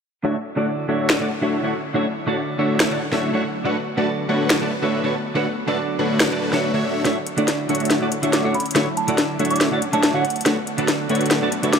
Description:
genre	future bass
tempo	141 BPM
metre	4/4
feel	half-time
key	D major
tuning	A4 = 441 Hz
part	clean electric guitar	accompaniment	0.2-11.8 s	D3 to D5	-24 LUFS	right 2 dB	wide subtle chorus, low-pass filter, dub echo
part	airy breathy pad	sustained chords	0.5-11.8 s	D3 to F#4	-30 LUFS	right 1 dB	chorus, phaser
part	dense compressed supersaw	riff	0.2-11.8 s	A3 to A5	-22 LUFS	equal	low-pass filter, dub echo
part	trap drum kit	drums	1.1-11.8 s	finger snaps, hi-hat, snare drum	-22 LUFS	left 1 dB	studio reverb
part	soft synth bell	melody	8.3-11.8 s	F#5 to D6	-26 LUFS	right 3 dB	chorus, low-pass filter, dub echo
room	light reverb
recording	none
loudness	-18 LUFS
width	side -6 dB against mid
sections	0.2-7.1 A section; 7.1-11.8 B section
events	filter sweep on supersaw synth 0.2-7.1, 7.1-11.8; filter sweep on clean electric guitar 0.2-7.1; build-up 7.1-11.8; drum fill 7.1-11.8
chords	0.2 Dmaj9; 3.4 Bm7; 6.8 Dmaj9; 10.2 Bm7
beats	| 0.25 0.67 1.10 1.52 | 1.95 2.37 2.80 3.23 | 3.65 4.08 4.50 4.93 | 5.35 5.78 6.20 6.63 | 7.05 7.48 7.91 8.33 | 8.76 9.18 9.61 10.03 | 10.46 10.88 11.31 11.74

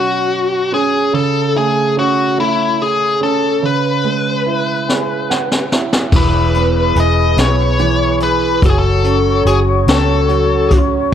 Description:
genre	six-eight pop ballad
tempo	48 BPM (dotted quarters)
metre	6/8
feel	straight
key	unclear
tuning	A4 = 443 Hz
part	biting lead guitar	melody	0.0-10.8 s	E4 to D#5	-16 LUFS	left 3 dB	overdrive
part	warm grand piano	accompaniment	0.0-11.1 s	B2 to F#5	-18 LUFS	right 7 dB	none
part	jazz brush drum kit	drums	4.9-10.9 s	crash cymbal, hi-hat, kick drum, snare drum	-16 LUFS	left 1 dB	none
part	mellow hollow flute section	sustained chords	6.1-11.1 s	E4 to C#6	-20 LUFS	left 5 dB	none
part	vintage muted fingered electric bass	bass	6.1-11.1 s	E1 to C#2	-16 LUFS	left 1 dB	none
room	light reverb, small room ambience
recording	none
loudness	-12 LUFS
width	side -9 dB against mid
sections	0.0-6.1 A section; 6.1-11.1 B section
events	grand piano fill 4.9-6.1; drum fill 4.9-6.1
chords	0.0 Bsus2; 1.1 A/C#; 3.6 C#m7; 6.1 E; 8.6 F#m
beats	| 1.14 2.38 | 3.63 4.88 | 6.13 7.38 | 8.62 9.87 | 11.12

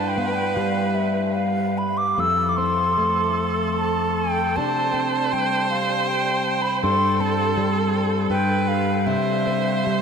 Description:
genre	celtic folk, Celtic slow air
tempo	78 BPM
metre	3/4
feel	uneven beats, rubato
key	C major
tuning	A4 = 440 Hz
part	bright baroque flute	melody	0.0-10.0 s	E5 to E6	-23 LUFS	equal	ping-pong delay
part	clear viola	second line	0.0-10.0 s	A4 to C5	-26 LUFS	right 3 dB	none
part	fingerpicked plugged-in swing-style acoustic guitar	accompaniment	0.0-10.0 s	F2 to E4	-24 LUFS	left 1 dB	analog chorus
room	wet huge ambient reverb, RT60 9.0 s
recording	dreamy mix soaked in reverb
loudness	-19 LUFS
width	side -6 dB against mid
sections	0.0-10.0 A section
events	none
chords	0.0 G; 2.2 Fmaj7; 4.6 Csus2; 6.8 Gsus4; 8.3 N.C.; 9.1 Cadd9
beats	0.56 1.36 | 2.17 2.98 3.78 | 4.56 5.32 6.08 | 6.83 7.57 8.32 | 9.09 9.87

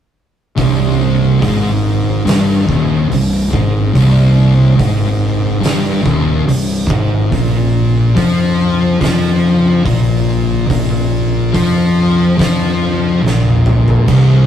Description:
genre	stoner and doom metal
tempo	71 BPM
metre	4/4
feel	straight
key	C minor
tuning	A4 = 439 Hz
part	thick fuzz guitar	riff	0.6-14.5 s	C2 to F3	-15 LUFS	left 6 dB	distortion
part	thick fuzz guitar	riff	0.6-14.5 s	C2 to F3	-14 LUFS	right 4 dB	distortion
part	fuzz fingered electric bass	bass	0.6-14.5 s	C1 to F2	-19 LUFS	equal	overdrive
part	oversized low-tuned drum kit	drums	0.6-14.3 s	crash cymbal, hi-hat, kick drum, snare drum, toms	-19 LUFS	right 1 dB	none
room	moderate studio reverb, RT60 0.6 s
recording	rough rehearsal-room recording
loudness	-10 LUFS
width	side -9 dB against mid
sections	0.6-14.5 A section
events	drum fill 13.2-14.1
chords	0.6 Cm; 7.3 Bb5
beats	| 0.57 1.41 2.26 3.10 | 3.95 4.79 5.64 6.48 | 7.33 8.17 9.02 9.86 | 10.70 11.55 12.39 13.24 | 14.08

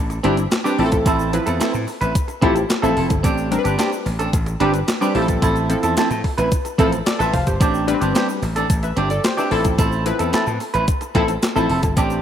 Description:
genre	early-eighties boogie funk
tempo	110 BPM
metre	4/4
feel	straight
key	unclear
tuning	A4 = 441 Hz
part	slap bass	bass	0.0-12.2 s	F1 to A2	-23 LUFS	equal	none
part	clean electric guitar	riff	0.1-12.2 s	C4 to B4	-21 LUFS	right 2 dB	lush chorus
part	clean 12-bit digital drum machine	drums	0.1-12.1 s	handclaps, hi-hat, kick drum, snare drum	-21 LUFS	equal	overdrive
part	egg shaker	percussion	0.1-12.2 s	none	-38 LUFS	left 6 dB	none
part	funky polysynth comp	accompaniment	0.2-11.9 s	F3 to F5	-22 LUFS	left 2 dB	chorus
room	moderate plate reverb, RT60 2.4 s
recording	rough home demo mix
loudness	-16 LUFS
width	side -9 dB against mid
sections	0.0-12.2 A section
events	none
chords	0.0 Am11; 0.8 Fmaj7/A; 3.2 Am11; 5.2 Fmaj7/A; 7.6 Am11; 9.5 Fmaj7/A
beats	0.51 | 1.06 1.60 2.15 2.69 | 3.24 3.79 4.33 4.88 | 5.42 5.97 6.51 7.06 | 7.60 8.15 8.70 9.24 | 9.79 10.33 10.88 11.42 | 11.97

